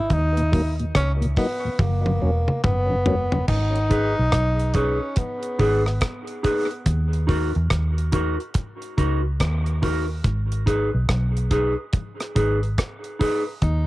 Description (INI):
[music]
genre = dub reggae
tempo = 71 BPM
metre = 4/4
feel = swing 63% on 16ths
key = G# minor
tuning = A4 = 441 Hz
[part]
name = breathy tenor saxophone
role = melody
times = 0.0-6.4, 13.6-13.9 s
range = A#3 to E4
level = -26 LUFS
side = equal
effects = cassette tape, tape echo
[part]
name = vintage muted fingered electric bass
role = bass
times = 0.0-13.9 s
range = E1 to E2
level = -22 LUFS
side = equal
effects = none
[part]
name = deep reggae drum kit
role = drums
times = 0.1-13.9 s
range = crash cymbal, hi-hat, kick drum, rim click, toms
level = -24 LUFS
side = equal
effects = cassette tape
[part]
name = mellow tonewheel organ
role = accompaniment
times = 0.4-3.4 s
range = D#2 to D#4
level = -29 LUFS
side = left 1 dB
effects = overdrive, chorus vibrato, slow rotary speaker, tape echo
[part]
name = mellow electric guitar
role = accompaniment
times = 3.9-13.4 s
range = D#4 to B4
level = -26 LUFS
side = equal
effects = tape echo
[sound]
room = small room ambience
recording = home recording on cassette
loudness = -20 LUFS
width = side -18 dB against mid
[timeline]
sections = 0.0-3.5 A section; 3.5-13.9 B section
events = break 0.0-3.5; drum fill 1.8-3.5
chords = 0.1 D#m; 1.8 F#; 3.5 G#m; 6.9 D#m; 10.2 G#m